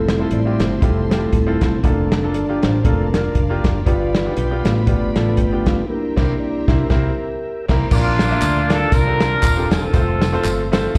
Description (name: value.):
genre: uptempo gospel.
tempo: 118 BPM.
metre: 4/4.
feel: swing 56% on 8ths.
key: F major.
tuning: A4 = 440 Hz.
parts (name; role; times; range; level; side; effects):
clear baby grand piano; accompaniment; 0.0-11.0 s; G2 to F5; -27 LUFS; equal; slapback echo.
mellow tonewheel organ; sustained chords; 0.0-11.0 s; G3 to D6; -25 LUFS; equal; slow rotary speaker.
warm studio string section; sustained chords; 0.0-7.9 s; C5 to C6; -40 LUFS; equal; none.
fingered electric bass; bass; 0.0-11.0 s; Eb1 to D2; -23 LUFS; equal; none.
warm soul drum kit; drums; 0.1-11.0 s; crash cymbal, hi-hat, kick drum, snare drum; -21 LUFS; equal; none.
mellow horn section; melody; 7.9-10.7 s; Bb3 to Bb4; -22 LUFS; equal; slapback echo.
tambourine and handclaps; percussion; 7.9-11.0 s; none; -35 LUFS; equal; slapback echo.
room: little or no reverb.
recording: live gig heard through the venue's PA, recital hall reverb.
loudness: -18 LUFS.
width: mono.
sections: 0.0-7.9 A section; 7.9-11.0 B section.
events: tonewheel organ solo 0.0-7.9; band accent 5.9-7.9.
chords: 0.0 Fmaj7; 1.8 Bbmaj7/F; 3.9 G7; 5.9 C7; 7.9 Bb; 8.9 C9sus4; 9.9 F.